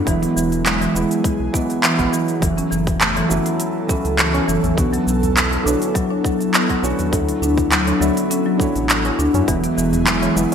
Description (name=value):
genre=organic downtempo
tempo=102 BPM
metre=4/4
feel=straight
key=unclear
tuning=A4 = 441 Hz
part: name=felt-muted upright piano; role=accompaniment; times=0.0-10.5 s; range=D3 to C#5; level=-24 LUFS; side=right 2 dB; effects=lush chorus, sidechain pumping, ping-pong delay
part: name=airy breathy pad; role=sustained chords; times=0.0-10.5 s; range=F#3 to A4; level=-24 LUFS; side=left 1 dB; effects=chorus, sidechain pumping
part: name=marimba with medium mallets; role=arpeggios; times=0.0-10.5 s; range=E3 to D4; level=-21 LUFS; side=left 1 dB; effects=ping-pong delay
part: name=round analog bass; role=bass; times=0.1-10.5 s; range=E1 to F#2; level=-24 LUFS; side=equal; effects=none
part: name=electronic kick drum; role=drums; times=0.1-9.6 s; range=none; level=-23 LUFS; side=equal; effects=none
part: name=organic electronic drum kit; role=drums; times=0.1-10.5 s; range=handclaps, hi-hat, shaker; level=-20 LUFS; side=right 1 dB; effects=gated reverb
part: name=tabla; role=percussion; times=2.9-10.5 s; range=none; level=-31 LUFS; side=right 2 dB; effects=none
room=moderate lush hall reverb, RT60 2.1 s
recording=bright 1980s-style digital production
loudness=-16 LUFS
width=side -7 dB against mid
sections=0.0-10.5 A section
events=none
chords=0.1 Eadd9; 2.4 F#m7; 4.8 Bm7; 7.1 Dmaj7; 9.5 Eadd9